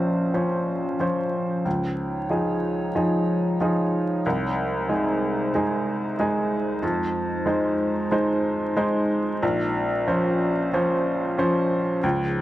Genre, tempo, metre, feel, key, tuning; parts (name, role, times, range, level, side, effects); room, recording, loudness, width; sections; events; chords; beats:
neoclassical piano and strings; 92 BPM; 4/4; rubato; A4 = 441 Hz
clear upright piano; accompaniment; 0.0-12.4 s; Bb1 to C5; -22 LUFS; equal; plate reverb
warbly tape-like pad; sustained chords; 0.0-12.4 s; F3 to Db5; -29 LUFS; equal; chorus, built-in reverb
wet studio reverb, RT60 0.7 s; vinyl crackle; -21 LUFS; side -14 dB against mid
0.0-12.4 A section
0.0 Bbmadd9; 1.7 Dbadd9; 4.2 Ab/C; 6.8 Fm7; 9.4 Bbmadd9
0.34 1.00 | 1.65 2.30 2.95 3.60 | 4.25 4.89 5.54 6.19 | 6.82 7.46 8.12 8.77 | 9.42 10.07 10.72 11.38 | 12.04